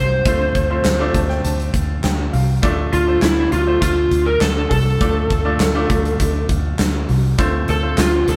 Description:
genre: piano-driven pop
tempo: 101 BPM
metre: 4/4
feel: straight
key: unclear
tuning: A4 = 440 Hz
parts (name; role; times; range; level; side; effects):
- lead guitar through a small cranked amp; melody; 0.0-8.4 s; E4 to C5; -21 LUFS; equal; overdrive
- bright grand piano; accompaniment; 0.0-8.4 s; A2 to A5; -27 LUFS; equal; none
- vintage muted fingered electric bass; bass; 0.0-8.4 s; C2 to D2; -22 LUFS; equal; none
- huge arena drum kit; drums; 0.3-8.4 s; handclaps, hi-hat, kick drum, snare drum; -23 LUFS; equal; none
- tambourine; percussion; 7.4-8.4 s; none; -37 LUFS; equal; none
room: moderate studio reverb, RT60 0.5 s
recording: band playing live in one room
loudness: -17 LUFS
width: mono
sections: 0.0-8.4 A section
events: grand piano fill 0.8-2.6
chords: 0.0 F

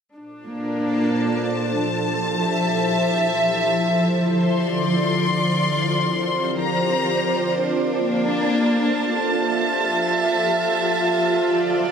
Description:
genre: UK garage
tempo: 129 BPM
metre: 4/4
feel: swing 64% on 16ths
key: unclear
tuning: A4 = 444 Hz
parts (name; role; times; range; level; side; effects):
- ethereal airy pad; sustained chords; 0.6-11.9 s; Bb2 to E5; -24 LUFS; equal; ensemble chorus, built-in reverb
- warm studio string section; texture; 0.2-11.9 s; F3 to C6; -20 LUFS; equal; none
- riser; sound effects; 11.5-11.9 s; none; -38 LUFS; right 2 dB; none
room: moderate plate reverb, RT60 2.7 s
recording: none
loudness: -18 LUFS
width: side -7 dB against mid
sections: 0.2-11.9 A section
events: filter sweep on ambient pad 0.2-11.9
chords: 0.2 Bbmaj7; 1.8 Fmaj7; 3.9 Dm7; 5.7 C7sus4; 7.6 Bbmaj7; 9.2 Fmaj7; 11.3 Dm7

